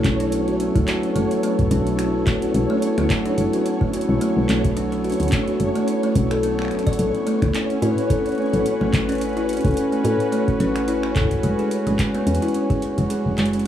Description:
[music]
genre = IDM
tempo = 108 BPM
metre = 4/4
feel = swing 56% on 16ths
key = unclear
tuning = A4 = 440 Hz
[part]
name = warm analog pad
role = sustained chords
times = 0.0-13.7 s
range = F#3 to B4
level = -24 LUFS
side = equal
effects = chorus
[part]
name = woody FM bass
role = bass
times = 0.0-13.7 s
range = E1 to A2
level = -24 LUFS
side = equal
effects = tube saturation
[part]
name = booming analog drum machine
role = drums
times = 0.0-13.6 s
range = finger snaps, handclaps, hi-hat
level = -31 LUFS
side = right 1 dB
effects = overdrive
[part]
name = electronic kick drum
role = drums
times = 0.0-12.8 s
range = none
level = -22 LUFS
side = equal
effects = overdrive
[part]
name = flickering grainy texture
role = texture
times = 0.0-13.7 s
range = C#4 to C#5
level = -29 LUFS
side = equal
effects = built-in reverb
[part]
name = buzzing kalimba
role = arpeggios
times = 0.2-13.5 s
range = G#3 to D5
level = -23 LUFS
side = equal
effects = dub echo
[sound]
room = wet studio reverb, RT60 0.5 s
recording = rough home demo mix, studio ambience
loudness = -18 LUFS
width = side -10 dB against mid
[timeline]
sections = 0.0-13.7 A section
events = none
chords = 0.0 B7(no3); 7.0 A; 11.4 E

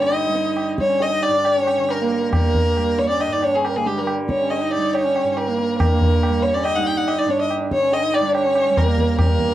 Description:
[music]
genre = indian classical, Hindustani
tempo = 139 BPM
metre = 4/4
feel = straight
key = G raga todi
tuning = A4 = 441 Hz
[part]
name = clear violin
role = melody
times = 0.0-9.5 s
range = G4 to G5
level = -20 LUFS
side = left 1 dB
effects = none
[part]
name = warm sarangi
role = second line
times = 0.0-9.5 s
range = G3 to Eb4+21c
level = -24 LUFS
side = right 5 dB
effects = none
[part]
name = tanpura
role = drone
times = 0.0-9.5 s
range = G2 to G3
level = -28 LUFS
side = right 1 dB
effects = none
[part]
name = tabla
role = percussion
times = 0.1-9.5 s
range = none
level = -23 LUFS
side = equal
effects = none
[sound]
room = small room ambience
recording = dry, close 1970s-style studio recording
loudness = -17 LUFS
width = side -13 dB against mid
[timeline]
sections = 0.0-5.8 A section; 5.8-9.5 B section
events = speeding up 0.0-9.5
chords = none

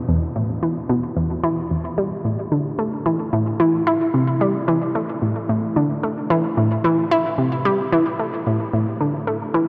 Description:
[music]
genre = ambient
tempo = 111 BPM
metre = 4/4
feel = straight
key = A minor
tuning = A4 = 441 Hz
[part]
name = analog pluck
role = solo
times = 0.1-9.7 s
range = E2 to E4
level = -21 LUFS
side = equal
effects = chorus, tape echo
[sound]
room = wet huge ambient reverb, RT60 8.0 s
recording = dark, warm production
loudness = -21 LUFS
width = mono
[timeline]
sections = 0.0-2.2 A section; 2.2-9.7 B section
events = none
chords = none

